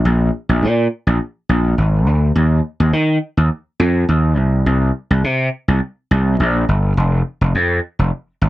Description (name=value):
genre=funk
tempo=104 BPM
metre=4/4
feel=straight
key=unclear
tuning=A4 = 441 Hz
part: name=gritty slap bass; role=solo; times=0.1-8.5 s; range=F1 to Eb3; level=-13 LUFS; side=equal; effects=overdrive
room=light reverb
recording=dry, close 1970s-style studio recording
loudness=-14 LUFS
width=side -16 dB against mid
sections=0.0-8.5 A section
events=none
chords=none